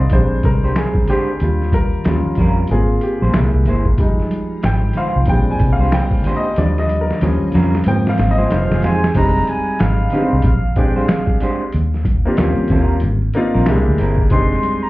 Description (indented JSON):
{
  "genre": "R&B, neo-soul",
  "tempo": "93 BPM",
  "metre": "4/4",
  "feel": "swing 62% on 16ths",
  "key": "F dorian",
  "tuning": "A4 = 440 Hz",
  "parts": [
    { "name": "clear grand piano", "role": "accompaniment", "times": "0.0-14.9 s", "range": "F3 to Ab5", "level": "-20 LUFS", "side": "left 1 dB", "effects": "none" },
    { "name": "vintage muted fingered electric bass", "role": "bass", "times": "0.0-14.6 s", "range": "F1 to Ab2", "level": "-16 LUFS", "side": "equal", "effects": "none" },
    { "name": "boom bap sampler-style drum kit", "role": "drums", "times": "0.1-14.8 s", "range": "crash cymbal, finger snaps, hi-hat, kick drum, snare drum", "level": "-19 LUFS", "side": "equal", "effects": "none" },
    { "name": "congas", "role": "percussion", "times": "0.1-14.8 s", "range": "none", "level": "-26 LUFS", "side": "right 2 dB", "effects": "none" },
    { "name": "electric guitar through a small old amp", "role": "second line", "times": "0.6-14.2 s", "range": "G3 to C5", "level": "-24 LUFS", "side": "right 2 dB", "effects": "none" },
    { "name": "tonewheel organ", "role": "sustained chords", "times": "4.0-9.1, 14.3-14.9 s", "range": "Eb3 to G5", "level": "-27 LUFS", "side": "right 1 dB", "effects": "slow rotary speaker, chorus vibrato" },
    { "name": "breathy concert flute", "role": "melody", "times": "8.5-14.9 s", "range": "F5 to C6", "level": "-23 LUFS", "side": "equal", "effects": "tape echo" }
  ],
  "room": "light reverb",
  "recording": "heard muffled through a wall, club reverb, EQ",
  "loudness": "-14 LUFS",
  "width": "side -18 dB against mid",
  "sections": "0.0-9.1 A section; 9.1-14.9 B section",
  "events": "grand piano solo 0.0-9.1; drum fill 6.6-9.1",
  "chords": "0.1 Bb13; 1.4 Ebmaj9; 2.1 Eb9; 2.7 Ab69; 3.3 C7b13; 4.0 Fm7; 5.3 Bb13; 6.6 Ebmaj9; 7.2 Eb9; 7.9 Ab69; 8.5 Fm9; 9.1 Fm7; 10.4 Bb13; 11.7 Ebmaj9; 12.4 Eb9; 13.0 Ab69; 13.7 C7b13; 14.3 Fm7",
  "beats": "0.12 0.76 | 1.41 2.05 2.70 3.34 | 3.99 4.63 5.28 5.92 | 6.57 7.21 7.86 8.50 | 9.15 9.79 10.44 11.08 | 11.73 12.37 13.02 13.66 | 14.31"
}